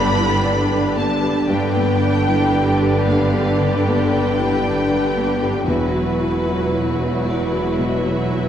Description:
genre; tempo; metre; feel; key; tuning
cinematic, emotional film score for orchestra; 57 BPM; 4/4; rubato; unclear; A4 = 439 Hz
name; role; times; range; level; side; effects
clear symphonic violin section; melody; 0.0-8.5 s; B4 to B5; -26 LUFS; left 3 dB; none
clear symphonic violin section; second line; 0.0-8.5 s; F#4 to B4; -28 LUFS; left 1 dB; none
felt-muted upright piano; accompaniment; 0.0-8.5 s; E2 to G4; -24 LUFS; left 3 dB; none
rich symphonic viola section; accompaniment; 0.0-8.5 s; D3 to E4; -24 LUFS; right 3 dB; none
warm French horn section; sustained chords; 0.0-8.5 s; D3 to B4; -24 LUFS; left 2 dB; none
concert harp; arpeggios; 0.0-8.5 s; G2 to B4; -27 LUFS; left 5 dB; none
clear symphonic double bass section; bass; 0.0-8.5 s; E1 to G1; -25 LUFS; right 3 dB; none
rich symphonic cello section; bass; 0.0-8.5 s; E2 to G2; -24 LUFS; right 3 dB; none
room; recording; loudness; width
wet scoring stage reverb, RT60 1.6 s; worn, warbling old tape, cassette tape, warbly pitch drift; -16 LUFS; side -9 dB against mid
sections
0.0-8.5 A section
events
none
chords
0.0 G; 5.7 Esus2

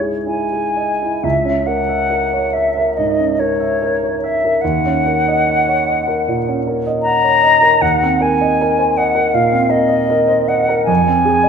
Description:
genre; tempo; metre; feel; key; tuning
classical, impressionist duo for flute and grand piano; 56-83 BPM; 4/4; rubato; C# dorian; A4 = 440 Hz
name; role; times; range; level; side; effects
warm grand piano; accompaniment; 0.0-11.5 s; C#2 to F#5; -17 LUFS; right 2 dB; none
concert flute; melody; 0.3-11.5 s; C#5 to A#5; -15 LUFS; left 2 dB; none
room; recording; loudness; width
wet recital hall reverb, RT60 1.6 s; minimal, uncompressed stereo recording; -13 LUFS; side -6 dB against mid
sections
0.0-1.2 A section; 1.2-11.5 B section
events
none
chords
0.0 C#madd9; 1.2 C#m6; 4.6 D#m7; 7.8 D#5; 10.9 Fm

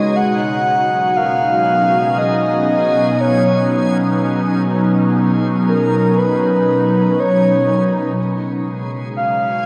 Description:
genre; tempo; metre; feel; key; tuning
ambient; 60 BPM; 4/4; straight; B lydian; A4 = 438 Hz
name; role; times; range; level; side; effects
breathy flute-like synth lead; melody; 0.0-9.7 s; A#4 to F#5; -19 LUFS; equal; chorus, shimmer reverb, delay
airy breathy pad; sustained chords; 0.0-9.7 s; B2 to F#4; -19 LUFS; equal; chorus, shimmer reverb
felt-muted upright piano; arpeggios; 0.0-8.2 s; G#3 to C#5; -38 LUFS; equal; none
backwards swelling texture; texture; 0.0-9.7 s; F#4 to G#5; -35 LUFS; equal; built-in reverb, shimmer reverb
organ-like drone; drone; 1.4-8.3 s; B3; -27 LUFS; equal; ensemble chorus, built-in reverb
room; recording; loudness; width
wet cathedral reverb, RT60 6.6 s; in a vast, echoing space; -16 LUFS; mono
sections
0.0-8.2 A section; 8.2-9.7 A section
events
fade-out on synth texture 0.0-8.2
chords
0.2 Bmaj9; 8.2 C#9sus4

